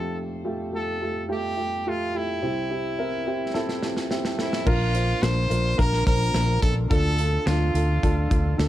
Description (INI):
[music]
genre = piano-driven pop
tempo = 107 BPM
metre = 4/4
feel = straight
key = unclear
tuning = A4 = 441 Hz
[part]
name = brilliant trumpet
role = melody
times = 0.0-8.6 s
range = E4 to C5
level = -28 LUFS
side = equal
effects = none
[part]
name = dark upright piano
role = accompaniment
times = 0.0-8.7 s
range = F1 to C5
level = -28 LUFS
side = right 1 dB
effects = none
[part]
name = modern studio drum kit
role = drums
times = 3.5-8.7 s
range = crash cymbal, hi-hat, kick drum, snare drum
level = -26 LUFS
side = equal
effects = none
[part]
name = airy breathy pad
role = sustained chords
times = 5.5-8.7 s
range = D3 to A4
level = -36 LUFS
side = equal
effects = none
[part]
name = fretless electric bass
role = bass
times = 4.7-8.7 s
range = Bb1 to D2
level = -23 LUFS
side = equal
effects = none
[sound]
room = light reverb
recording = dark, warm production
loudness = -22 LUFS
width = side -13 dB against mid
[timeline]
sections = 0.0-4.7 A section; 4.7-8.7 B section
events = drum fill 3.5-4.7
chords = 0.0 Fadd9; 2.4 C; 4.7 Bb; 6.9 Dm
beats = | 0.18 0.74 1.30 1.86 | 2.42 2.99 3.55 4.11 | 4.67 5.23 5.79 6.35 | 6.91 7.47 8.03 8.59